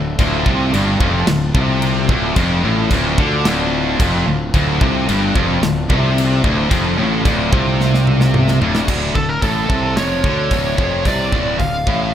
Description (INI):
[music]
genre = heavy metal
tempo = 110 BPM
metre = 4/4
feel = straight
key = D minor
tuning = A4 = 440 Hz
[part]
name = chamber organ, principal chorus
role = sustained chords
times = 0.0-8.9 s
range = D3 to F4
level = -29 LUFS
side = right 1 dB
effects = none
[part]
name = distorted electric guitar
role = riff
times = 0.0-8.9 s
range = D2 to D3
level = -21 LUFS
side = equal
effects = distortion
[part]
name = scooped high-gain guitar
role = riff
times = 0.0-12.1 s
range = D2 to D3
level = -20 LUFS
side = right 7 dB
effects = distortion
[part]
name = tight distorted guitar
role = riff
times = 0.0-12.1 s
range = D2 to D3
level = -20 LUFS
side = left 8 dB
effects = distortion
[part]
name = fuzz fingered electric bass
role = bass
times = 0.0-12.1 s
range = D1 to D2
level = -21 LUFS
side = equal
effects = overdrive
[part]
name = modern studio drum kit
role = drums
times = 0.2-12.0 s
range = crash cymbal, hi-hat, kick drum, snare drum, toms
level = -20 LUFS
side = equal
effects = none
[part]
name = high-gain lead guitar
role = melody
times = 9.2-12.1 s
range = A4 to F5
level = -20 LUFS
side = right 2 dB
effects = distortion
[sound]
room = light reverb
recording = none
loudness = -14 LUFS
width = side -10 dB against mid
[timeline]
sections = 0.0-8.9 A section; 8.9-12.1 B section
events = drum fill 7.8-8.9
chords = 0.0 Dm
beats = | 0.20 0.74 1.28 1.83 | 2.37 2.92 3.46 4.00 | 4.55 5.09 5.63 6.18 | 6.72 7.26 7.80 8.35 | 8.89 9.43 9.98 10.52 | 11.06 11.61